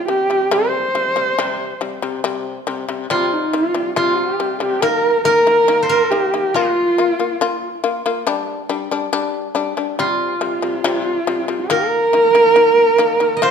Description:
mongolian traditional, Mongolian folk; 70 BPM; 4/4; straight; C yu mode; A4 = 440 Hz
dark horsehead fiddle; melody; 0.0-13.5 s; Eb4 to C5; -15 LUFS; right 1 dB
shamisen; arpeggios; 0.1-13.5 s; C3 to F4; -21 LUFS; left 6 dB
steel-string zither; second line; 3.1-13.5 s; F4 to Eb5; -22 LUFS; right 2 dB
moderate recital hall reverb, RT60 1.4 s; -15 LUFS; side -7 dB against mid
0.0-3.1 A section; 3.1-13.5 B section
0.0 C5; 4.8 Eb5; 6.5 Bb5; 8.3 G5; 10.0 C5; 11.7 Eb5
0.52 1.39 2.25 | 3.11 3.97 4.83 5.69 | 6.55 7.41 8.27 9.13 | 9.99 10.85 11.71 12.57 | 13.43

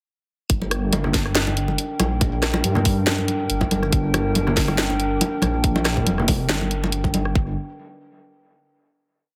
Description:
deep dubstep; 140 BPM; 4/4; swing 54% on 16ths, half-time; G minor; A4 = 436 Hz
dark analog pad; sustained chords; 0.5-7.6 s; D4 to G5; -29 LUFS; equal; lush chorus
dark detuned saw bass; bass; 0.5-7.6 s; F1 to G2; -26 LUFS; equal
electronic kick drum; drums; 0.5-7.4 s; -24 LUFS; equal
garage drum kit; drums; 0.5-7.3 s; hi-hat, rim click, snare drum; -26 LUFS; equal
congas; percussion; 0.6-7.2 s; -28 LUFS; equal; dub echo
light reverb, digital ambience; heavily compressed radio sound, multiband compression; -21 LUFS; mono
0.5-7.4 drop; 7.4-9.1 final chord
drop 0.5-7.4
0.5 Gm; 7.4 G
| 0.50 0.93 1.35 1.78 | 2.21 2.64 3.07 3.50 | 3.93 4.35 4.78 5.21 | 5.64 6.07 6.50 6.93 | 7.35

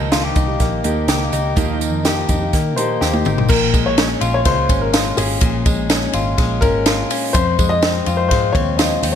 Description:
jangly indie pop; 125 BPM; 4/4; straight; Bb dorian; A4 = 438 Hz
fingerpicked steel-string acoustic guitar; accompaniment; 0.0-3.5 s; Eb3 to G4; -25 LUFS; right 5 dB
direct-recorded clean electric guitar; arpeggios; 0.0-9.2 s; F2 to G4; -21 LUFS; left 4 dB; slapback echo, digital delay
vintage muted picked electric bass; bass; 0.0-9.2 s; Ab1 to Eb3; -22 LUFS; right 1 dB
compact cocktail drum kit; drums; 0.1-9.1 s; crash cymbal, hi-hat, kick drum, ride cymbal, snare drum, toms; -18 LUFS; equal
tambourine; percussion; 0.1-9.1 s; -31 LUFS; right 11 dB
dark upright piano; melody; 2.8-9.2 s; Ab4 to Eb5; -20 LUFS; left 3 dB; digital delay
moderate lush hall reverb, RT60 2.1 s; big arena sound; -14 LUFS; side -8 dB against mid
0.0-3.5 A section; 3.5-9.2 B section
drum fill 3.0-3.5
0.0 Ebadd9; 3.5 Bbm7; 7.3 Fm7
0.12 0.60 1.09 | 1.57 2.05 2.53 3.02 | 3.50 3.98 4.46 4.94 | 5.42 5.90 6.38 6.86 | 7.34 7.83 8.31 8.79

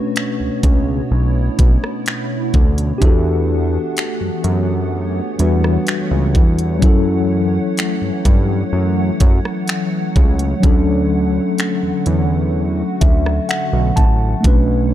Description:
contemporary R&B; 63 BPM; 4/4; straight; A4 = 439 Hz
mellow tine electric piano; accompaniment; 0.0-14.9 s; F#3 to A5; -20 LUFS; left 2 dB; medium stereo tremolo
hollow soft pad; sustained chords; 0.0-14.9 s; B2 to F#5; -24 LUFS; right 2 dB; ensemble chorus
trap drum kit; drums; 0.2-14.7 s; finger snaps, hi-hat, kick drum, rim click; -15 LUFS; equal
fat analog bass; bass; 0.4-14.9 s; A1 to G2; -18 LUFS; equal
digital ambience; dark, warm production; -14 LUFS; side -12 dB against mid
0.0-14.9 A section
tine electric piano fill 12.5-14.4
0.0 Bm9; 3.0 Em11; 6.8 F#m7; 10.6 Dmaj7
0.16 1.11 2.06 | 3.01 3.97 4.92 5.87 | 6.82 7.78 8.73 9.68 | 10.63 11.59 12.54 13.49 | 14.44

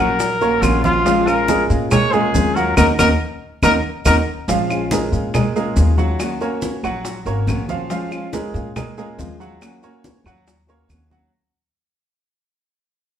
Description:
latin, Cuban son and guajira; 140 BPM; 4/4; straight; Bb minor; A4 = 440 Hz
warm trumpet; melody; 0.0-4.2 s; F4 to Db5; -19 LUFS; left 2 dB
nylon-string guitar; accompaniment; 0.0-11.3 s; Eb3 to Gb4; -24 LUFS; left 2 dB
clear baby grand piano; arpeggios; 0.0-11.3 s; F3 to Gb5; -22 LUFS; right 4 dB
upright bass; bass; 0.0-11.3 s; Ab1 to Bb2; -21 LUFS; equal
bongos; percussion; 0.2-11.1 s; -29 LUFS; left 3 dB
congas; percussion; 0.2-11.3 s; -24 LUFS; equal
maracas; percussion; 0.2-11.3 s; -32 LUFS; right 4 dB
claves; percussion; 0.6-11.1 s; -28 LUFS; equal
wet studio reverb, RT60 0.9 s; band playing live in one room; -15 LUFS; side -9 dB against mid
0.0-4.5 A section; 4.5-11.3 B section
band accent 2.8-4.5; fade-out 4.5-11.3
0.0 Ebm7; 1.1 Bbm7; 2.8 Ebm7; 4.5 Bbm7; 6.2 Ebm7; 7.9 Bbm7; 9.6 Ebm7
0.20 0.63 | 1.06 1.49 1.91 2.34 | 2.77 3.20 3.63 4.05 | 4.48 4.91 5.34 5.77 | 6.20 6.62 7.05 7.48 | 7.91 8.33 8.76 9.19 | 9.62 10.04 10.47 10.90

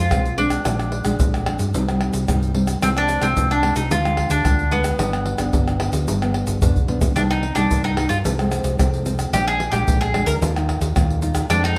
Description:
samba and choro; 111 BPM; 4/4; straight; C minor; A4 = 439 Hz
bowl-back mandolin; melody; 0.0-11.8 s; B3 to Bb4; -25 LUFS; equal
nylon-string guitar; accompaniment; 0.0-11.8 s; F2 to F4; -27 LUFS; equal
hollow-body short-scale fingered electric bass; bass; 0.0-11.8 s; G1 to G2; -26 LUFS; equal
tube shaker, surdo, pandeiro and tamborim; percussion; 0.1-11.8 s; -24 LUFS; equal
wet large studio reverb, RT60 1.4 s; -20 LUFS; mono
0.0-11.8 A section
drum fill 6.4-7.2
0.0 Fm; 0.7 Bb7; 1.7 Cm; 2.8 Fm/C; 3.9 Ddim; 5.0 G7; 7.2 Cm7; 8.2 Fm/C; 9.3 Bb7; 10.4 Ebsus2
0.11 | 0.66 1.20 1.74 2.28 | 2.83 3.37 3.91 4.45 | 5.00 5.54 6.08 6.62 | 7.16 7.71 8.25 8.79 | 9.33 9.87 10.41 10.96 | 11.50

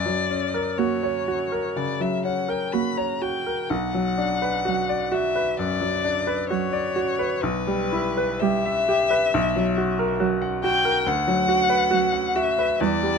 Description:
classical, slow romantic movement for piano trio; 59-70 BPM; 4/4; rubato; B minor; A4 = 441 Hz
rich violin; melody; 0.0-13.2 s; B4 to B5; -24 LUFS; left 4 dB
bright grand piano; accompaniment; 0.0-13.2 s; B1 to F#5; -23 LUFS; equal
rich cello; second line; 0.8-13.2 s; F#3 to A#3; -28 LUFS; right 13 dB
light reverb; dark, warm production; -21 LUFS; side -5 dB against mid
0.0-13.2 A section
0.0 F#; 3.7 Bm; 7.4 Em/B; 9.3 F#/B; 11.1 Bm/D
0.78 1.76 2.72 | 3.70 4.65 5.57 6.49 | 7.42 8.40 9.32 10.21 | 11.07 11.93 12.81

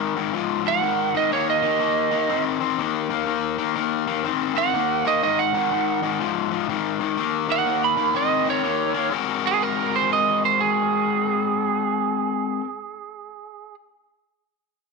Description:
blues; 123 BPM; 4/4; swing 64% on 8ths; Ab mixolydian; A4 = 440 Hz
cranked stack guitar; riff; 0.0-12.6 s; Ab2 to Bb4; -23 LUFS; left 11 dB; overdrive
lightly driven lead guitar; melody; 0.7-13.7 s; Ab4 to Cb6; -22 LUFS; right 11 dB
moderate echo chamber reverb, RT60 1.4 s, digital ambience; 1960s-style stereo with parts hard left and right; -20 LUFS; side -3 dB against mid
0.0-9.1 A section; 9.1-13.0 B section
0.0 Ab5; 1.3 Eb5; 5.2 Ab5; 7.2 Eb5; 9.1 Ab9
0.34 0.83 | 1.31 1.80 2.29 2.78 | 3.27 3.76 4.25 4.73 | 5.22 5.71 6.20 6.69 | 7.17 7.66 8.15 8.64 | 9.13 9.61 10.10 10.59 | 11.08 11.57 12.05 12.54

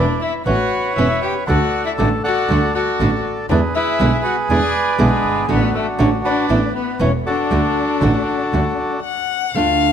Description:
tango; 119 BPM; 4/4; rubato; D major; A4 = 440 Hz
bandoneon; melody; 0.0-9.0 s; B3 to G#5; -20 LUFS; right 1 dB
warm violin; second line; 0.0-9.9 s; G#3 to F#5; -22 LUFS; left 8 dB
nylon-string guitar; accompaniment; 0.0-9.9 s; B2 to F#4; -21 LUFS; right 3 dB
clear double bass; bass; 0.0-9.9 s; E1 to E2; -21 LUFS; right 1 dB
light reverb; close, detailed microphones; -15 LUFS; side -8 dB against mid
0.0-9.5 A section
stop 9.0-9.5
0.0 Aadd9; 1.5 D; 3.5 E7; 5.5 D/A; 6.5 Aadd9; 7.5 D
0.47 0.97 | 1.48 1.99 2.50 3.00 | 3.50 4.00 4.50 5.00 | 5.50 6.00 6.50 7.00 | 7.51 8.01 8.52 9.03 | 9.54

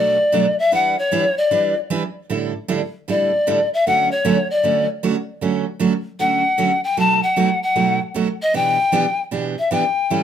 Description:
country; 154 BPM; 4/4; swing 66% on 8ths; D major; A4 = 445 Hz
breathy bright pan flute; melody; 0.0-10.2 s; C#5 to A5; -17 LUFS; left 3 dB; plate reverb
picked steel-string acoustic guitar; accompaniment; 0.0-10.2 s; A2 to B4; -20 LUFS; right 6 dB
moderate studio ambience, RT60 0.5 s; -16 LUFS; side -9 dB against mid
0.0-10.2 A section
pan flute solo 0.0-10.2
0.0 Bm7; 0.7 Em7; 2.3 A7sus4; 3.9 Dmaj7; 7.0 B7; 8.5 Em7/B
0.34 | 0.73 1.12 1.51 1.90 | 2.29 2.68 3.07 3.46 | 3.86 4.25 4.64 5.03 | 5.42 5.81 6.20 6.59 | 6.98 7.37 7.76 8.15 | 8.54 8.93 9.32 9.72 | 10.11

